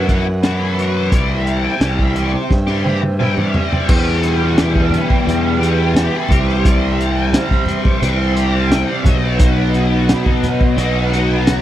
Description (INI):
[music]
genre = psychedelic rock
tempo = 87 BPM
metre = 4/4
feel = straight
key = unclear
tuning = A4 = 440 Hz
[part]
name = soft string machine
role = sustained chords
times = 0.0-11.6 s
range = F#4 to G5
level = -24 LUFS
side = right 4 dB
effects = phaser, ensemble chorus
[part]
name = overdriven electric guitar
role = riff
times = 0.0-11.6 s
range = E2 to G4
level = -19 LUFS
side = left 2 dB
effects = flanger
[part]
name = fuzz fingered electric bass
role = bass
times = 0.0-11.6 s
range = B1 to G2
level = -17 LUFS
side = equal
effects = overdrive
[part]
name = crunchy breakbeat drum kit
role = drums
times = 0.1-11.6 s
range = crash cymbal, hi-hat, kick drum, snare drum, toms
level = -16 LUFS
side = equal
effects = none
[part]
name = congas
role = percussion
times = 4.6-11.6 s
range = none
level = -25 LUFS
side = right 2 dB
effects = none
[sound]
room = little or no reverb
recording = dry, close 1970s-style studio recording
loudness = -13 LUFS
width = side -12 dB against mid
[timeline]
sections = 0.0-3.9 A section; 3.9-11.6 B section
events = drum fill 2.5-3.9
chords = 0.0 Bsus4; 1.1 C; 3.9 Em; 6.3 C; 9.1 B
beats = 0.44 | 1.13 1.82 2.51 3.20 | 3.89 4.58 5.27 5.96 | 6.65 7.34 8.03 8.72 | 9.41 10.10 10.79 11.47